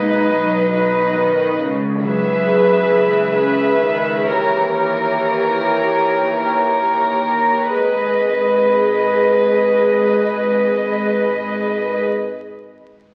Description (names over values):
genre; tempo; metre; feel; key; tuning
classical, slow romantic movement for string orchestra; 30-51 BPM (dotted quarters); 12/8; rubato; G# minor; A4 = 441 Hz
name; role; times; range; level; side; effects
warm chamber violin section; melody; 0.0-12.0 s; C#5 to E5; -26 LUFS; equal; none
warm symphonic violin section; second line; 0.0-12.0 s; A#4 to B4; -19 LUFS; equal; none
dark symphonic viola section; accompaniment; 0.0-12.0 s; D#4 to G#4; -24 LUFS; equal; none
rich symphonic double bass section; bass; 0.0-12.0 s; G#1 to D#2; -30 LUFS; equal; none
warm symphonic cello section; bass; 0.0-12.0 s; C#3 to G#3; -27 LUFS; equal; none
room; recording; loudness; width
wet concert hall reverb, RT60 1.7 s; very old 78 rpm record, vinyl crackle; -17 LUFS; mono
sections
0.0-7.7 A section; 7.7-13.1 B section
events
slowing down 0.0-7.7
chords
0.0 B; 1.6 C#m7; 4.3 D#7b9; 7.7 G#m